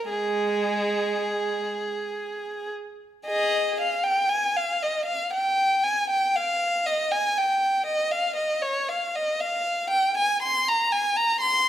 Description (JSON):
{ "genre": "classical, baroque-style suite movement for unaccompanied violin", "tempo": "59 BPM", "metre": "3/4", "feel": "rubato", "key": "Ab major", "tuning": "A4 = 440 Hz", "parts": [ { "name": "warm violin", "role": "solo", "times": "0.0-11.7 s", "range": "Ab3 to C6", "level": "-22 LUFS", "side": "equal", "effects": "none" } ], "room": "moderate recital hall reverb, RT60 1.4 s", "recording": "none", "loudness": "-22 LUFS", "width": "side -11 dB against mid", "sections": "0.0-3.3 A section; 3.3-11.7 B section", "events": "none", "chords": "none" }